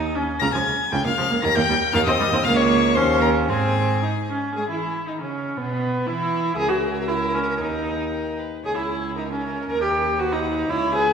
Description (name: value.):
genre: quick classical-period movement for string quartet.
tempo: 111-123 BPM.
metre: 2/4.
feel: rubato.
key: Ab major, G# minor from 4.6 s.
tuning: A4 = 444 Hz.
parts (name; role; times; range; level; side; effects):
rich viola; accompaniment; 0.0-11.1 s; Db3 to A#4; -22 LUFS; right 1 dB; none.
rich cello; bass; 0.0-11.1 s; Db2 to G#3; -26 LUFS; right 3 dB; none.
warm violin; melody; 0.4-11.1 s; B3 to Bb6; -28 LUFS; left 7 dB; none.
rich violin; second line; 0.4-11.1 s; B3 to Bb5; -28 LUFS; left 3 dB; none.
room: wet scoring stage reverb, RT60 1.7 s.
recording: recorded in a church or concert hall.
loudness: -19 LUFS.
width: side -6 dB against mid.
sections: 0.0-4.6 A section; 4.6-11.1 A section.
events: none.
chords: 0.4 Db; 0.9 Bbm/Db; 1.4 Eb; 1.9 Cm/Eb; 2.4 Bbm/Db; 3.0 Eb5; 3.5 Ab; 4.6 G#5; 5.6 E5/B; 6.6 A#dim/C#; 7.6 D#sus4; 8.7 C#m; 9.2 A#dim/C#; 9.7 D#; 10.2 B/D#.